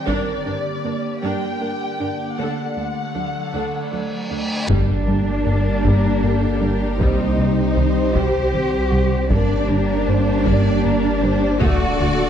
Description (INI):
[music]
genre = cinematic, hybrid orchestral and electronic film score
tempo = 52 BPM (dotted quarters)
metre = 6/8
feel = straight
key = G harmonic minor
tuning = A4 = 439 Hz
[part]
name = dark symphonic violin section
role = melody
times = 0.0-12.3 s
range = Bb4 to G5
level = -31 LUFS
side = left 3 dB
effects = none
[part]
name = evolving wavetable pad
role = sustained chords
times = 0.0-12.3 s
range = D3 to D5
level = -25 LUFS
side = equal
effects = chorus, built-in reverb, phaser
[part]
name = clear symphonic viola section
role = accompaniment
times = 0.1-12.3 s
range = G3 to Bb4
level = -29 LUFS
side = right 1 dB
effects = none
[part]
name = soft round pluck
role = arpeggios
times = 0.1-12.2 s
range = C3 to D4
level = -30 LUFS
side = right 5 dB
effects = chorus, tape echo
[part]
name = warm symphonic cello section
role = bass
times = 0.1-12.3 s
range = D2 to G4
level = -24 LUFS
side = right 2 dB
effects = none
[part]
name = taiko ensemble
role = drums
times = 0.1-12.3 s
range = none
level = -25 LUFS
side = equal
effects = none
[part]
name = reverse cymbal and impact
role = sound effects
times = 3.8-7.0 s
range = none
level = -29 LUFS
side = equal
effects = none
[part]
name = mellow French horn section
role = sustained chords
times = 4.7-12.3 s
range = G3 to D4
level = -28 LUFS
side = left 4 dB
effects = none
[part]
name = rubbery square bass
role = riff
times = 4.7-12.2 s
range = C2 to G3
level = -22 LUFS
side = left 2 dB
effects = none
[part]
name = saturated sub bass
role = bass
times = 4.7-12.3 s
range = D1 to C2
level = -25 LUFS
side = equal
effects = none
[part]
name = warm symphonic double bass section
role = bass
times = 4.7-12.1 s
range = G1 to D2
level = -26 LUFS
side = right 2 dB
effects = none
[part]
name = warm symphonic violin section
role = second line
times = 5.8-12.3 s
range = A4 to D5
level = -28 LUFS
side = left 2 dB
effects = none
[sound]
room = moderate scoring stage reverb, RT60 1.7 s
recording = dark, warm production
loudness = -17 LUFS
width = side -9 dB against mid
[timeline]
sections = 0.0-4.7 A section; 4.7-12.3 A section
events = reverse cymbal 3.8-4.7; impact 4.7-7.0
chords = 0.1 Gm; 2.4 D; 4.7 Gm; 7.0 Cm; 9.3 Gm; 11.6 D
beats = | 0.07 1.23 | 2.38 3.54 | 4.69 5.84 | 7.00 8.15 | 9.31 10.46 | 11.61